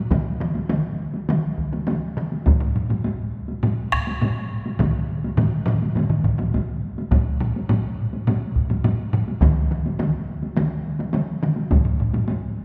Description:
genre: japanese traditional, taiko drum ensemble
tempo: 104 BPM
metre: 4/4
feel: straight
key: none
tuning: none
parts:
  - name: solo taiko drums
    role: percussion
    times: 0.1-12.4 s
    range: none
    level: -30 LUFS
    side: equal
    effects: none
  - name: taiko ensemble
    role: percussion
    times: 0.1-11.6 s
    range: none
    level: -27 LUFS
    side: equal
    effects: none
  - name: taiko ensemble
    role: percussion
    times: 0.1-11.8 s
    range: none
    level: -27 LUFS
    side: equal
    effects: none
  - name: taiko ensemble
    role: percussion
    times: 2.5-12.3 s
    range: none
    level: -26 LUFS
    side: equal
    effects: none
room: wet church reverb, RT60 2.8 s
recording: recorded in a church or concert hall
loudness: -22 LUFS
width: mono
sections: 0.0-12.6 A section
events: speeding up 0.0-12.6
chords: none

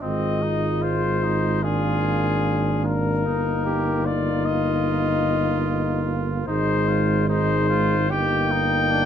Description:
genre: classical, brass quintet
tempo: 74 BPM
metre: 4/4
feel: straight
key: Eb major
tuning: A4 = 440 Hz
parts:
  - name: clear trumpet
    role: melody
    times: 0.0-9.1 s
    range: Ab4 to G5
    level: -25 LUFS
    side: left 6 dB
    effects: none
  - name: clear trumpet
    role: second line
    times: 0.0-9.1 s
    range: C4 to G4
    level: -29 LUFS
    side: right 6 dB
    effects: none
  - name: clear trombone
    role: accompaniment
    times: 0.0-9.1 s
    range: Ab3 to Bb3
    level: -28 LUFS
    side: right 2 dB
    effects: none
  - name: mellow French horn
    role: accompaniment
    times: 0.0-9.1 s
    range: D4 to F4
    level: -28 LUFS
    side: left 5 dB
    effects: none
  - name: mellow tuba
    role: bass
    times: 0.0-9.1 s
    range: G1 to Ab1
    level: -24 LUFS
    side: right 3 dB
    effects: none
room: moderate studio reverb, RT60 0.7 s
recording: dark, warm production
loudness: -20 LUFS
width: side -9 dB against mid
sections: 0.0-9.1 A section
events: none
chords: 0.0 Fm7/Ab; 1.6 Bb7/Ab; 3.2 Eb/G; 6.5 Ab; 8.1 Eb/G

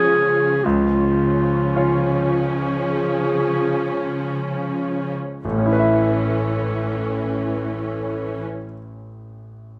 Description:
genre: cinematic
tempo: 45-57 BPM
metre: 4/4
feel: rubato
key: A major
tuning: A4 = 440 Hz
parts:
  - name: warm clarinet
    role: second line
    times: 0.0-8.4 s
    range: E#4 to A4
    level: -25 LUFS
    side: equal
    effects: none
  - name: bright grand piano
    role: accompaniment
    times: 0.0-9.8 s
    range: A1 to E5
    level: -27 LUFS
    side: equal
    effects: none
  - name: warm symphonic viola section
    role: accompaniment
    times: 0.0-8.4 s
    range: E3 to C#4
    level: -27 LUFS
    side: equal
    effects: none
  - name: warm chamber cello section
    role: bass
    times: 0.0-8.4 s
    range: A2 to C#3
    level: -28 LUFS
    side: equal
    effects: none
room: moderate stone room reverb, RT60 1.1 s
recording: close, detailed microphones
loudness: -21 LUFS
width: mono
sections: 0.0-5.4 A section; 5.4-9.8 B section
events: slowing down 0.0-5.4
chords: 0.0 C#; 5.4 Aadd9

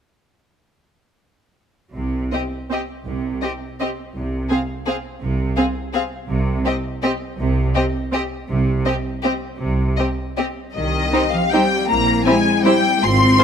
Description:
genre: classical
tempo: 151-179 BPM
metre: 3/4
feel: rubato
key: C minor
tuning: A4 = 439 Hz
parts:
  - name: rich studio double bass section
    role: bass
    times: 1.9-13.3 s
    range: Ab1 to C2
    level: -24 LUFS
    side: right 2 dB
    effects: none
  - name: clear studio cello section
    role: bass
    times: 2.0-13.4 s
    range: C3 to C4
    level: -23 LUFS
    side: right 2 dB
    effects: none
  - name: rich studio violin section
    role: melody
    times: 2.3-13.4 s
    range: Eb5 to C6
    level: -21 LUFS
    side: left 4 dB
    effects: none
  - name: clear studio violin section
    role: second line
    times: 2.3-13.4 s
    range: G4 to C5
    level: -26 LUFS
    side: left 2 dB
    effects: none
  - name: warm studio viola section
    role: accompaniment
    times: 2.3-13.4 s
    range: C4 to F4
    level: -23 LUFS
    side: right 1 dB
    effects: none
  - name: warm French horn section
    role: sustained chords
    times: 10.8-13.4 s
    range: C4 to G4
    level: -22 LUFS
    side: left 4 dB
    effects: none
room: light reverb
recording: none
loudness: -18 LUFS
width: side -8 dB against mid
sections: 2.0-10.8 A section; 10.8-13.4 B section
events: none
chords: 2.0 N.C.; 10.8 Cm; 11.9 C7/Bb

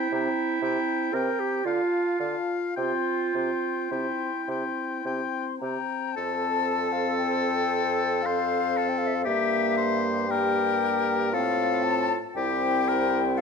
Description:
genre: classical, slow romantic movement for wind quintet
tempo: 52-60 BPM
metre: 3/4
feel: rubato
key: F major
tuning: A4 = 440 Hz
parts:
  - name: mellow concert flute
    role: melody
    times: 0.0-13.4 s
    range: E5 to C6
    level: -29 LUFS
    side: left 10 dB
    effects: none
  - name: clear oboe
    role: second line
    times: 0.0-13.4 s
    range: G4 to G5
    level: -30 LUFS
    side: left 5 dB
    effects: none
  - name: clear clarinet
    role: accompaniment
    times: 0.0-13.4 s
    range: E4 to Bb4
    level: -31 LUFS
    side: right 8 dB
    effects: none
  - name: warm French horn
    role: accompaniment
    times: 0.0-13.4 s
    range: Bb3 to F4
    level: -31 LUFS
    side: equal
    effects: none
  - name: warm bassoon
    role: bass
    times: 0.1-13.4 s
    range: C2 to D3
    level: -32 LUFS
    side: right 2 dB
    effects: none
room: moderate recital hall reverb, RT60 1.8 s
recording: close, detailed microphones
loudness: -24 LUFS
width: side -5 dB against mid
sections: 0.0-6.2 A section; 6.2-13.4 B section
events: none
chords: 0.0 C7; 1.7 Dm; 2.8 C; 6.2 F; 9.3 Edim/G; 11.3 F/A; 12.4 C

